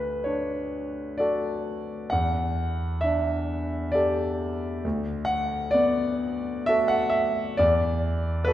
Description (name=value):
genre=classical, impressionist solo piano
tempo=66 BPM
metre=3/4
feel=rubato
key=D major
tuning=A4 = 439 Hz
part: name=clear concert grand piano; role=solo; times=0.0-8.5 s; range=D2 to F#5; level=-24 LUFS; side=equal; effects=none
room=moderate concert hall reverb, RT60 1.8 s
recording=heard from further back in the room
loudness=-24 LUFS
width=side -12 dB against mid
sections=0.0-8.5 A section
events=none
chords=0.0 Dmaj7; 2.1 Em11; 4.8 D6; 7.6 E7(no3)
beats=0.24 1.19 | 2.12 3.03 3.94 | 4.84 5.74 6.67 | 7.59 8.48